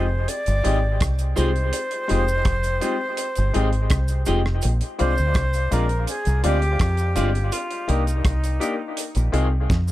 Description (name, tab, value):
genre	lovers rock reggae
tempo	83 BPM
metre	4/4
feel	straight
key	F dorian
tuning	A4 = 440 Hz
part	breathy bright jazz flute	melody	0.0-9.3 s	Eb4 to D5	-27 LUFS	equal	tape echo
part	clear baby grand piano	accompaniment	0.0-9.5 s	Ab3 to Ab4	-28 LUFS	left 5 dB	dub echo
part	electric guitar through a small old amp	stabs	0.0-9.5 s	F4 to Eb5	-31 LUFS	right 2 dB	phaser, dub echo
part	deep dub fingered electric bass	bass	0.0-9.9 s	F1 to F2	-21 LUFS	equal	none
part	damped 70s drum kit	drums	0.3-9.9 s	hi-hat, kick drum, rim click, snare drum	-25 LUFS	equal	none
part	cabasa	percussion	0.3-9.9 s	none	-39 LUFS	right 4 dB	none
room	little or no reverb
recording	dark, warm production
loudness	-19 LUFS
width	side -15 dB against mid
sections	0.0-9.9 A section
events	drum fill 9.7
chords	0.0 Fm7; 4.6 Bb7; 7.5 Cm7; 9.0 Bb7sus4